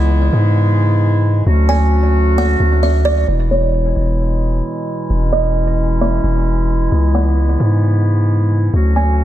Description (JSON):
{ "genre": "hip hop, atmospheric cloud-rap", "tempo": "132 BPM", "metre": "4/4", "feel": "half-time", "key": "unclear", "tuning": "A4 = 439 Hz", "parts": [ { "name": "buzzing kalimba", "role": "melody", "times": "0.0-9.2 s", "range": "C#5 to G#5", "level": "-21 LUFS", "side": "right 2 dB", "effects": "low-pass filter, tape echo" }, { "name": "warm woodwind section", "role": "sustained chords", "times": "0.0-9.2 s", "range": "B2 to F#4", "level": "-19 LUFS", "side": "right 2 dB", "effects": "stereo widening, low-pass filter" }, { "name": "long sustained 808-style bass", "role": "bass", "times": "0.0-9.2 s", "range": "E1 to G#2", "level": "-14 LUFS", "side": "equal", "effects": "none" } ], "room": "small room ambience", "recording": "none", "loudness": "-12 LUFS", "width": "side -12 dB against mid", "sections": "0.0-3.3 A section; 3.3-9.2 B section", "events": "filter sweep 3.3-9.2", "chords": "0.0 C#m7; 1.5 Dmaj7; 3.3 E; 6.9 C#m7; 8.7 Dmaj7" }